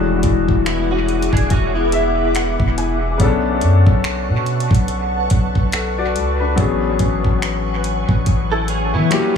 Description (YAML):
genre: contemporary R&B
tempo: 71 BPM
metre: 4/4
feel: swing 58% on 16ths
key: unclear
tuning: A4 = 440 Hz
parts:
  - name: warm concert grand piano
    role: accompaniment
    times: 0.0-9.4 s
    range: C#3 to G#5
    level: -20 LUFS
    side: left 6 dB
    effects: dub echo
  - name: ethereal airy pad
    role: sustained chords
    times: 0.0-9.4 s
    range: G#4 to E6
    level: -24 LUFS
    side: right 1 dB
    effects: ensemble chorus, built-in reverb, phaser, sidechain pumping
  - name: long sustained 808-style bass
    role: bass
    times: 0.0-9.1 s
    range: E1 to E3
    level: -20 LUFS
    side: equal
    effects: none
  - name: smooth R&B drum kit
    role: drums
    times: 0.2-9.3 s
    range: finger snaps, hi-hat, kick drum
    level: -19 LUFS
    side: equal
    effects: dub echo
  - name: direct-recorded clean electric guitar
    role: arpeggios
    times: 0.7-3.0, 8.5-9.3 s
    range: G3 to A4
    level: -23 LUFS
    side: right 5 dB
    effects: ensemble chorus, dub echo
room: little or no reverb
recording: echo-heavy mix, small room ambience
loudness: -15 LUFS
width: side -7 dB against mid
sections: 0.0-9.4 A section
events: grand piano fill 1.5-3.2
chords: 0.0 E9; 3.2 Bm9; 6.6 Amaj13